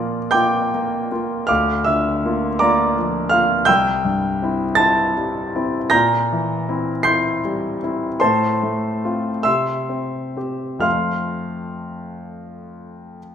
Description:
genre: classical, romantic nocturne for solo piano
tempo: 41-57 BPM (dotted quarters)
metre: 6/8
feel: rubato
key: F major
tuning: A4 = 439 Hz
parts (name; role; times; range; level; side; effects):
- warm concert grand piano; solo; 0.0-13.3 s; C2 to C7; -18 LUFS; equal; none
room: moderate recital hall reverb, RT60 1.4 s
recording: minimal, uncompressed stereo recording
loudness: -17 LUFS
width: side -8 dB against mid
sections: 0.0-13.3 A section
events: none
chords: 0.0 Bb; 1.5 Bb/D; 3.7 C; 5.9 C7/Bb; 8.2 F/A; 9.5 C; 10.8 F

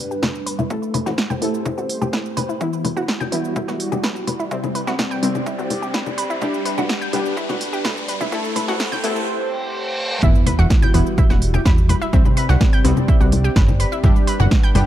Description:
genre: melodic techno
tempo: 126 BPM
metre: 4/4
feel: straight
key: E minor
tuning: A4 = 440 Hz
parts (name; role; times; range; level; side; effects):
- dark analog pad; sustained chords; 0.0-14.9 s; G3 to D5; -28 LUFS; right 1 dB; chorus, phaser, sidechain pumping
- plucky analog bass; bass; 0.0-14.8 s; E1 to A2; -20 LUFS; right 1 dB; sidechain pumping, high-pass filter
- analog pluck; arpeggios; 0.1-14.8 s; B3 to G6; -27 LUFS; right 1 dB; chorus, sidechain pumping, digital delay
- deep house drum kit; drums; 0.1-14.8 s; congas, hi-hat, shaker, snare drum; -24 LUFS; left 2 dB; none
- electronic kick drum; drums; 0.2-14.6 s; none; -16 LUFS; right 1 dB; high-pass filter on kick, high-pass filter on room
- synth brass stab; stabs; 0.7-14.9 s; C3 to A4; -24 LUFS; left 1 dB; chorus, sidechain pumping, digital delay
- riser, reverse cymbal and sub drop; sound effects; 4.4-12.1 s; none; -28 LUFS; equal; none
room: light reverb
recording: dark, warm production, high-pass filter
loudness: -16 LUFS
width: side -12 dB against mid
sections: 0.0-10.2 A section; 10.2-14.9 B section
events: build-up 0.0-10.2; filter sweep on synth arpeggio sound 0.0-10.2; filter sweep on synth stab 0.0-10.2; filter sweep 0.0-10.2; riser 4.4-9.3; reverse cymbal 9.3-10.2; drop 10.2-14.9; impact 10.2-12.1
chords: 0.0 G; 0.7 Am7; 2.6 Emadd9; 4.5 Csus2; 6.4 G; 8.3 Am7; 10.2 Emadd9; 12.1 Csus2; 14.0 G

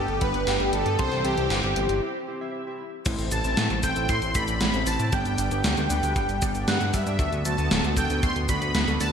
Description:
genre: synthwave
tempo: 116 BPM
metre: 4/4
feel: straight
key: G major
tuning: A4 = 440 Hz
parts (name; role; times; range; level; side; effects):
- soft supersaw; melody; 0.0-9.1 s; G4 to C6; -28 LUFS; equal; phaser, ping-pong delay
- soft synth bell; second line; 0.0-9.1 s; G5 to C7; -34 LUFS; right 1 dB; chorus, phaser
- soft supersaw; sustained chords; 0.0-9.1 s; C3 to G4; -35 LUFS; right 1 dB; sidechain pumping
- electric guitar at the edge of break-up; arpeggios; 0.0-9.1 s; E3 to D4; -36 LUFS; left 2 dB; ensemble chorus, ping-pong delay
- chorused polysynth; stabs; 0.0-9.1 s; B3 to E5; -33 LUFS; right 1 dB; none
- fat analog bass; bass; 0.0-9.1 s; D1 to A2; -28 LUFS; equal; tube saturation, sidechain pumping
- gated 80s digital drum machine; drums; 0.1-9.1 s; crash cymbal, hi-hat, shaker, snare drum; -29 LUFS; equal; gated reverb, gated reverb snare, high-pass filter on hats, small room ambience, high-pass filter on snare, high-pass filter on cymbals, high-pass filter on perc
- kick drum; drums; 0.2-8.6 s; none; -30 LUFS; equal; small room ambience
room: wet lush hall reverb, RT60 1.7 s, digital ambience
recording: bright 1980s-style digital production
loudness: -22 LUFS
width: side -7 dB against mid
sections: 0.0-3.1 A section; 3.1-9.1 B section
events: filter sweep on analog polysynth 0.0-3.1; break 2.0-3.1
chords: 0.0 Gadd9; 1.0 C; 3.1 Am; 5.1 G; 7.2 D6

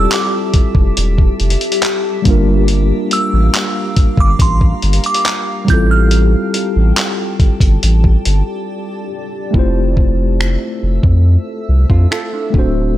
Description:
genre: contemporary R&B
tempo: 70 BPM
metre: 4/4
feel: straight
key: F major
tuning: A4 = 439 Hz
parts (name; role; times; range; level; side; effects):
- glassy synth bell; melody; 0.0-8.7 s; C6 to G6; -20 LUFS; right 3 dB; chorus, digital delay
- mellow tine electric piano; accompaniment; 0.0-13.0 s; G3 to C5; -20 LUFS; equal; medium stereo tremolo
- granular cloud pad; sustained chords; 0.0-13.0 s; G4 to E6; -23 LUFS; left 4 dB; built-in reverb
- saturated sub bass; bass; 0.0-13.0 s; D1 to F2; -13 LUFS; equal; none
- dusty soul sampler-style drum kit; drums; 0.1-12.7 s; finger snaps, handclaps, hi-hat, kick drum; -14 LUFS; equal; none
- flamenco guitar; arpeggios; 11.9-12.7 s; D4 to A4; -23 LUFS; right 5 dB; none
room: little or no reverb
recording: none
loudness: -11 LUFS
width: side -14 dB against mid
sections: 0.0-9.5 A section; 9.5-13.0 B section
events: break 8.7-9.5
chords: 0.0 Fmaj9; 2.3 Gm7; 5.7 Fmaj9; 9.5 Fmaj7

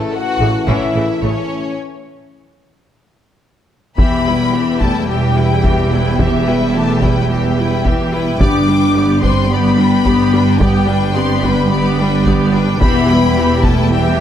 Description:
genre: cinematic, epic orchestral film score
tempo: 109 BPM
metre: 4/4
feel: straight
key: E minor from 4.0 s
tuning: A4 = 440 Hz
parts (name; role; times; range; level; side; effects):
- warm symphonic violin section; melody; 0.0-14.2 s; A4 to D6; -22 LUFS; left 4 dB; none
- bright symphonic violin section; second line; 0.0-14.2 s; A3 to G5; -25 LUFS; left 3 dB; none
- mellow French horn section; sustained chords; 0.0-14.2 s; E3 to E4; -18 LUFS; left 4 dB; none
- warm trombone section; sustained chords; 0.0-1.7 s; E3 to A3; -27 LUFS; right 3 dB; none
- rich symphonic viola section; accompaniment; 0.4-14.2 s; C#3 to G4; -21 LUFS; equal; none
- clear symphonic double bass section; bass; 0.4-14.2 s; E1 to A1; -18 LUFS; right 3 dB; none
- rich symphonic cello section; bass; 0.4-14.2 s; E2 to A2; -19 LUFS; right 3 dB; none
- taiko ensemble; drums; 0.7-14.1 s; none; -17 LUFS; equal; none
room: moderate scoring stage reverb, RT60 1.6 s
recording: none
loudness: -12 LUFS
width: side -10 dB against mid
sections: 0.0-4.0 A section; 4.0-14.2 B section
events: break 1.8-4.0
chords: 0.0 A; 1.8 N.C.; 4.0 Em; 8.4 G; 12.8 Em

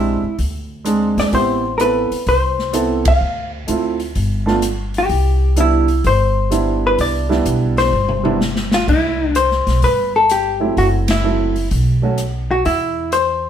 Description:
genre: jazz, small-group swing and bop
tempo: 127 BPM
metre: 4/4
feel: swing 67% on 8ths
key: C major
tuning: A4 = 441 Hz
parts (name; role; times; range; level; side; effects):
- hollow-body jazz guitar; melody; 0.0-13.5 s; E4 to F5; -17 LUFS; left 2 dB; none
- warm concert grand piano; accompaniment; 0.0-12.2 s; F#3 to A4; -19 LUFS; right 4 dB; none
- upright bass; bass; 0.0-13.5 s; F#1 to E2; -20 LUFS; equal; none
- swinging big-band drum kit; drums; 0.4-13.3 s; crash cymbal, hi-hat, kick drum, ride cymbal, rim click, snare drum, toms; -24 LUFS; left 1 dB; none
room: moderate stone room reverb, RT60 1.1 s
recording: band playing live in one room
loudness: -14 LUFS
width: side -9 dB against mid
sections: 0.0-8.9 A section; 8.9-13.5 A section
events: band accent 3.0, 11.0; drum fill 7.9-8.9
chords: 0.0 Bb13; 1.3 Am7; 3.2 Dm7; 4.2 G7; 5.1 Cmaj7; 8.9 C; 10.8 F#m7b5; 11.7 B5; 12.7 N.C.

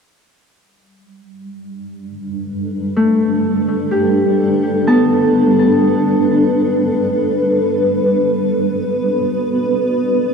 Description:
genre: ambient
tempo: free time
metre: none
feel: none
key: G major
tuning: A4 = 442 Hz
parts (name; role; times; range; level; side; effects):
- granular cloud pad; sustained chords; 1.7-10.3 s; G3 to D5; -15 LUFS; equal; built-in reverb
- Celtic harp; arpeggios; 3.0-8.0 s; A3 to A5; -17 LUFS; left 1 dB; ping-pong delay
room: wet huge ambient reverb, RT60 7.5 s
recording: cassette tape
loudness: -13 LUFS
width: side -5 dB against mid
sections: 0.6-10.3 A section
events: filter sweep on ambient pad 0.6-10.3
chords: 0.6 G; 8.2 Bm7

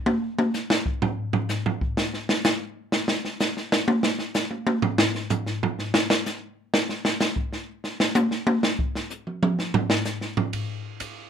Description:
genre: jazz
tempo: 126 BPM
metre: 4/4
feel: swing 67% on 8ths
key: none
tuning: none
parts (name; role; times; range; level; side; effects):
- open jazz drum kit; drums; 0.1-11.2 s; hi-hat, kick drum, ride cymbal, snare drum, toms; -22 LUFS; equal; none
room: moderate club reverb, RT60 0.6 s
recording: minimal, uncompressed stereo recording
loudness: -22 LUFS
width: side -8 dB against mid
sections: 0.0-10.5 A section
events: drum solo 0.0-10.5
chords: none

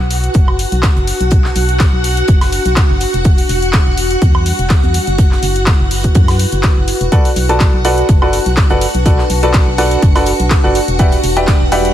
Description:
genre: piano house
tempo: 124 BPM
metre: 4/4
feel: swing 54% on 16ths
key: B minor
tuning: A4 = 442 Hz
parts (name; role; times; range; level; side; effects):
- string machine, violins; sustained chords; 0.0-11.9 s; F#4 to F#5; -19 LUFS; equal; ensemble chorus, sidechain pumping
- organ-like FM bass; bass; 0.0-11.9 s; E1 to F#2; -17 LUFS; equal; sidechain pumping
- warbly tape-like pad; texture; 0.0-11.9 s; G3 to A5; -25 LUFS; left 1 dB; chorus, built-in reverb, sidechain pumping
- deep reggae drum kit; drums; 0.1-11.8 s; hi-hat, snare drum; -28 LUFS; right 3 dB; sidechain pumping on hats, high-pass filter on hats, high-pass filter on snare, high-pass filter on room
- punchy analog drum machine; drums; 0.1-11.9 s; handclaps, hi-hat, woodblock; -21 LUFS; left 1 dB; none
- electronic kick drum; drums; 0.3-11.6 s; none; -11 LUFS; equal; none
- clear baby grand piano; riff; 7.1-11.9 s; F#4 to A5; -16 LUFS; right 1 dB; sidechain pumping, digital delay
room: small room ambience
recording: none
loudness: -10 LUFS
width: side -11 dB against mid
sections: 0.0-11.9 A section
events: fade-in on ambient pad 0.0-11.9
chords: 0.0 Bm7; 3.3 Em9; 7.1 Bm7; 11.0 Em9

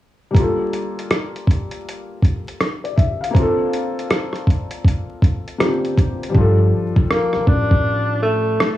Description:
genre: lo-fi hip hop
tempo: 80 BPM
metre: 4/4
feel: swing 64% on 16ths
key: G minor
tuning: A4 = 441 Hz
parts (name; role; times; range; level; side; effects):
- felt-muted upright piano; accompaniment; 0.3-8.8 s; F3 to F5; -22 LUFS; left 2 dB; cassette tape, low-pass filter, plate reverb
- dusty soul sampler-style drum kit; drums; 0.3-8.8 s; hi-hat, kick drum, rim click; -17 LUFS; equal; vintage 12-bit sampler grit, cassette tape
- upright bass; bass; 6.3-8.6 s; G1 to A1; -19 LUFS; equal; none
- breathy tenor saxophone; melody; 7.1-8.8 s; A3 to D4; -18 LUFS; left 1 dB; low-pass filter, plate reverb
room: light reverb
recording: home recording on cassette, vinyl crackle, small room ambience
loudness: -16 LUFS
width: side -14 dB against mid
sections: 0.3-6.3 A section; 6.3-8.8 B section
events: hi-hats muted 6.3-8.8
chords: 0.3 Gm9; 3.3 Bbmaj9; 6.3 G7sus2

